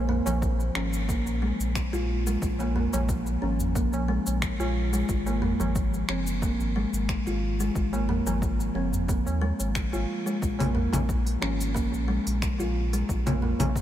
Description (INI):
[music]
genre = organic downtempo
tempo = 90 BPM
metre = 4/4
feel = straight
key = Bb minor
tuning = A4 = 440 Hz
[part]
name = kalimba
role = arpeggios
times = 0.0-13.7 s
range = F3 to F4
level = -28 LUFS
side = equal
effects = analog delay
[part]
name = warm sub bass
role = bass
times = 0.0-13.8 s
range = Gb1 to Eb2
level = -28 LUFS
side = equal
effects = sidechain pumping
[part]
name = tabla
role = percussion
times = 0.1-13.7 s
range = none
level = -37 LUFS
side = right 2 dB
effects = none
[part]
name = deep house drum kit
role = drums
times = 0.3-13.8 s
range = cabasa, congas, finger snaps, hi-hat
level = -34 LUFS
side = left 2 dB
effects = none
[part]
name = electronic kick drum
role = drums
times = 0.4-13.8 s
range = none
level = -30 LUFS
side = equal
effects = none
[sound]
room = moderate huge ambient reverb, RT60 8.4 s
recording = dreamy mix soaked in reverb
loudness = -24 LUFS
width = side -12 dB against mid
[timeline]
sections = 0.0-13.8 A section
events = none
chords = 0.0 Bb7(no3); 5.1 N.C.; 10.4 Bb7(no3)